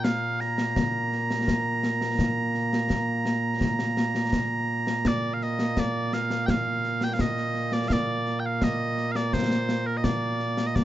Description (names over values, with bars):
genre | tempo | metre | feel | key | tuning
scottish traditional, Scottish pipe music | 84 BPM | 4/4 | straight | Bb major | A4 = 440 Hz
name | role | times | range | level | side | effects
loud bright bagpipes | melody | 0.0-10.8 s | Bb2 to Bb5 | -25 LUFS | right 2 dB | none
concert snare drum and concert bass drum | drums | 0.0-10.8 s | none | -28 LUFS | left 1 dB | none
room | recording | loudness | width
little or no reverb | dark, warm production, nothing above 7.7 kHz | -24 LUFS | side -13 dB against mid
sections
0.0-5.0 A section; 5.0-10.8 B section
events
none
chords
none